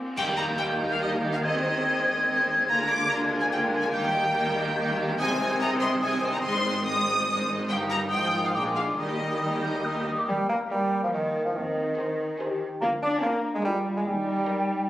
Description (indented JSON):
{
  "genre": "cinematic, playful, whimsical film cue",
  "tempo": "143 BPM",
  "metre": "3/4",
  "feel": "straight",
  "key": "Eb major",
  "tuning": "A4 = 440 Hz",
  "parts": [
    { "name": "rich chamber violin section", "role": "melody", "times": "0.0-14.8 s", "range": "F4 to Eb5", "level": "-36 LUFS", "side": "left 1 dB", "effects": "none" },
    { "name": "clear symphonic violin section", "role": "second line", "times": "0.0-14.8 s", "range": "G4 to Eb6", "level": "-29 LUFS", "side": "left 1 dB", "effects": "none" },
    { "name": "rich chamber viola section", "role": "accompaniment", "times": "0.0-14.8 s", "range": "Eb3 to G4", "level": "-34 LUFS", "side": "equal", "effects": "none" },
    { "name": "mellow hollow silver concert flute", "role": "second line", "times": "0.2-14.9 s", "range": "Eb5 to Ab6", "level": "-29 LUFS", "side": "left 1 dB", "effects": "none" },
    { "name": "clear bassoon", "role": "accompaniment", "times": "0.2-14.9 s", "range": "Eb3 to D4", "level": "-31 LUFS", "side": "right 1 dB", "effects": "none" },
    { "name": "warm French horn section", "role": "sustained chords", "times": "0.2-14.9 s", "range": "Eb3 to G4", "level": "-36 LUFS", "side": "left 2 dB", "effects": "none" },
    { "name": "warm chamber cello section", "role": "bass", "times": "0.2-14.9 s", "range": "G2 to D4", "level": "-31 LUFS", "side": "right 1 dB", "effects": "none" },
    { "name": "warm studio double bass section", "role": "bass", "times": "0.2-14.4 s", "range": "G1 to Eb2", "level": "-40 LUFS", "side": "right 2 dB", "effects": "none" },
    { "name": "clash cymbals and concert bass drum", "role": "percussion", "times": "0.2-1.0 s", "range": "none", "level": "-36 LUFS", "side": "left 1 dB", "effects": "none" }
  ],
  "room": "moderate scoring stage reverb, RT60 1.7 s",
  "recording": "recorded on a phone in the room, club reverb, compression",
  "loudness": "-23 LUFS",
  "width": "side -14 dB against mid",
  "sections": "0.2-10.3 A section; 10.3-14.9 A section",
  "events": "band accent 0.2-0.6",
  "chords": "0.2 Eb; 1.4 Ab/Eb; 2.7 Bb7/D; 3.9 Eb; 5.2 Ab/C; 6.4 Ab; 7.7 Eb/G; 8.1 Fm7/Ab; 8.6 Bb7; 9.0 Eb; 11.6 Ab/Eb; 12.8 Bb7/D; 14.1 Eb"
}